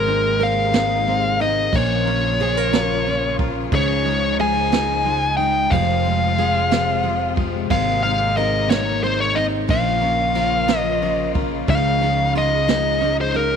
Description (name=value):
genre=six-eight pop ballad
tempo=60 BPM (dotted quarters)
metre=6/8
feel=straight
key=Ab major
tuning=A4 = 440 Hz
part: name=smooth overdriven lead guitar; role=melody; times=0.0-13.6 s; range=Bb4 to Ab5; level=-20 LUFS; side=left 1 dB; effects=none
part: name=nylon-string guitar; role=accompaniment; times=0.0-13.6 s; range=F2 to Bb4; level=-25 LUFS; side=right 10 dB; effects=none
part: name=clear symphonic string section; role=sustained chords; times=0.0-13.6 s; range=C3 to F4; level=-28 LUFS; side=left 13 dB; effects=none
part: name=picked steel-string acoustic guitar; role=arpeggios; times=0.0-13.6 s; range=F2 to Bb4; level=-27 LUFS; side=left 13 dB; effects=none
part: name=fingered electric bass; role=bass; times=0.0-13.6 s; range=F1 to Db2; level=-25 LUFS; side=equal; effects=none
part: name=jazz brush drum kit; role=drums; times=0.1-13.5 s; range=kick drum, ride cymbal, snare drum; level=-26 LUFS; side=right 4 dB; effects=none
room=light reverb, small room ambience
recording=1960s-style stereo with parts hard left and right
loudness=-17 LUFS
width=side -7 dB against mid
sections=0.0-13.6 A section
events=none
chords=0.0 Abadd9; 1.7 Bbm; 3.7 Dbadd9; 5.7 Fm; 7.7 Abadd9; 9.7 Bbm; 11.7 Dbadd9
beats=0.73 | 1.73 2.72 | 3.72 4.71 | 5.71 6.71 | 7.70 8.70 | 9.69 10.69 | 11.69 12.68